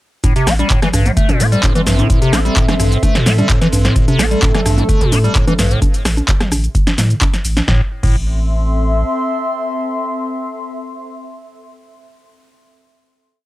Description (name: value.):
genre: acid house.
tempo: 129 BPM.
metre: 4/4.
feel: straight.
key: A minor.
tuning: A4 = 440 Hz.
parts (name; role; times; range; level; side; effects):
liquid acid bass; riff; 0.2-8.2 s; G2 to C4; -16 LUFS; equal; phaser, overdrive, wide subtle chorus, sidechain pumping, tape echo.
electro analog drum machine; drums; 0.2-8.2 s; congas, crash cymbal, handclaps, hi-hat, rim click, shaker, snare drum, toms; -18 LUFS; equal; none.
electronic kick drum; drums; 0.2-8.2 s; none; -15 LUFS; equal; none.
warbly tape-like pad; texture; 1.0-12.1 s; C4 to C6; -22 LUFS; left 1 dB; chorus, built-in reverb, phaser, sidechain pumping.
saturated sub bass; bass; 0.5-9.0 s; A1 to A2; -16 LUFS; equal; sidechain pumping.
lush unison pad; sustained chords; 4.0-5.8 s; A3 to A4; -22 LUFS; right 1 dB; chorus, vintage 12-bit sampler grit, sidechain pumping.
room: little or no reverb.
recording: dry, gritty hardware recording.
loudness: -12 LUFS.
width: side -17 dB against mid.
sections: 0.2-7.7 drop; 7.7-11.4 final chord.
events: drop 0.2-7.7.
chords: 0.2 Am.